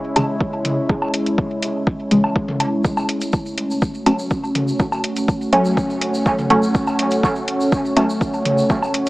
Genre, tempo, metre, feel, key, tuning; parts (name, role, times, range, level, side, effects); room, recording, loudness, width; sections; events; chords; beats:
dub techno; 123 BPM; 4/4; straight; F# minor; A4 = 440 Hz
deep dark ambient pad; sustained chords; 0.0-9.1 s; G#3 to C#5; -21 LUFS; equal; chorus, built-in reverb, sidechain pumping
filtered dub chord stab; stabs; 0.2-8.3 s; C#3 to C#4; -20 LUFS; equal; chorus, phaser, sidechain pumping, dub echo
electronic hi-hat; drums; 0.2-9.1 s; -24 LUFS; equal; overdrive
electronic woodblock and toms; percussion; 0.2-8.9 s; -23 LUFS; equal; sidechain pumping on perc, sidechain pumping on toms, dub echo
electronic kick drum; drums; 0.4-8.8 s; -20 LUFS; equal; overdrive
egg shaker; percussion; 2.8-9.1 s; -36 LUFS; equal
moderate huge ambient reverb, RT60 6.5 s; vinyl crackle, small speaker sound; -17 LUFS; side -19 dB against mid
0.0-9.1 A section
filter sweep on synth stab 0.0-9.1
0.0 C#m; 2.8 F#m
0.41 | 0.89 1.38 1.87 2.36 | 2.84 3.33 3.82 4.31 | 4.79 5.28 5.77 6.26 | 6.75 7.23 7.72 8.21 | 8.70